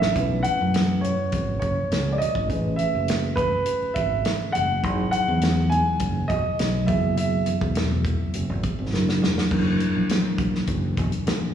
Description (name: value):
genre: lush 1970s-style soul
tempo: 103 BPM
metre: 4/4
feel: straight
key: unclear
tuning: A4 = 442 Hz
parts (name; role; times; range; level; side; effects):
- warm grand piano; melody; 0.0-8.9 s; B4 to G#5; -25 LUFS; right 2 dB; slapback echo
- mellow reed electric piano; accompaniment; 0.0-11.5 s; F#3 to B4; -28 LUFS; left 1 dB; fast tremolo, slapback echo
- fingered electric bass; bass; 0.0-11.5 s; E1 to F#2; -25 LUFS; equal; none
- warm soul drum kit; drums; 0.0-11.4 s; crash cymbal, hi-hat, kick drum, snare drum; -27 LUFS; equal; none
- congas; percussion; 0.4-11.4 s; none; -32 LUFS; right 7 dB; slapback echo
room: light reverb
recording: live gig heard through the venue's PA, recital hall reverb, small room ambience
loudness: -21 LUFS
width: side -9 dB against mid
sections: 0.0-9.5 A section; 9.5-11.5 B section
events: drum fill 0.0, 8.9-9.5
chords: 0.2 B9sus4; 2.5 Amaj9; 4.8 Emaj9/G#; 6.9 F#9sus4; 8.9 F#aug7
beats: | 0.16 0.74 1.33 1.91 | 2.50 3.08 3.67 4.25 | 4.84 5.42 6.01 6.59 | 7.17 7.76 8.34 8.93 | 9.51 10.10 10.68 11.26